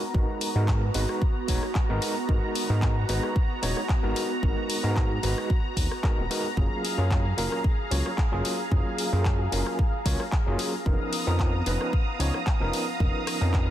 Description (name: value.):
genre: nu-disco, nu disco.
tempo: 112 BPM.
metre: 4/4.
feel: swing 53% on 16ths.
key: G# dorian.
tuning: A4 = 440 Hz.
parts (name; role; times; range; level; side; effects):
lush unison pad; sustained chords; 0.0-13.7 s; B3 to D#6; -32 LUFS; right 1 dB; chorus, phaser, sidechain pumping.
overdriven tine electric piano; accompaniment; 0.1-13.7 s; E#3 to C#5; -31 LUFS; equal; fast tremolo, sidechain pumping, ping-pong delay.
chorused synth bass; bass; 0.1-13.7 s; D#1 to G#2; -27 LUFS; equal; sidechain pumping.
electronic kick drum; drums; 0.1-13.7 s; none; -25 LUFS; equal; none.
house drum kit; drums; 0.4-13.7 s; handclaps, hi-hat, rim click; -34 LUFS; left 2 dB; soft clipping on snare.
room: light reverb.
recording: dense, heavily limited modern master.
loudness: -23 LUFS.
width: side -12 dB against mid.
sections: 0.0-13.7 A section.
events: none.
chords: 0.0 G#m9; 6.6 F#maj9; 10.9 C#13/E#.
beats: | 0.15 0.68 1.22 1.75 | 2.29 2.83 3.36 3.90 | 4.43 4.97 5.50 6.04 | 6.58 7.11 7.65 8.18 | 8.72 9.25 9.79 10.32 | 10.86 11.40 11.93 12.47 | 13.00 13.54.